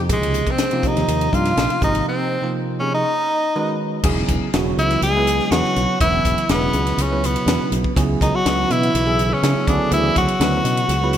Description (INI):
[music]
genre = electric jazz fusion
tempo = 122 BPM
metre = 4/4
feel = straight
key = unclear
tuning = A4 = 439 Hz
[part]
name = bell-like tine electric piano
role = accompaniment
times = 0.0-11.2 s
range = C3 to B4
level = -23 LUFS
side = right 4 dB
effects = analog chorus
[part]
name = fingered electric bass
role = bass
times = 0.0-11.2 s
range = E1 to C#3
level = -22 LUFS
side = equal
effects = none
[part]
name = edgy tenor saxophone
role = melody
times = 0.1-11.2 s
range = Ab3 to G#4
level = -21 LUFS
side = equal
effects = ping-pong delay
[part]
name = breathy trombone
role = second line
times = 0.1-11.2 s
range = B2 to F4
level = -27 LUFS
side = left 3 dB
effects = ping-pong delay
[part]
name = crisp fusion drum kit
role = drums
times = 0.1-11.2 s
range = crash cymbal, hi-hat, kick drum, ride cymbal, snare drum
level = -23 LUFS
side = left 1 dB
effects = gated reverb
[sound]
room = moderate lush hall reverb, RT60 1.9 s, small room ambience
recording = bright 1980s-style digital production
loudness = -16 LUFS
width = side -10 dB against mid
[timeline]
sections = 0.0-4.0 A section; 4.0-11.2 B section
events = break 2.1-4.0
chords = 0.1 Bbm11; 0.8 Ebadd9; 1.8 Abmaj9; 2.8 Bbm9; 3.1 B; 4.0 E6; 8.0 C#m7; 9.7 Dmaj9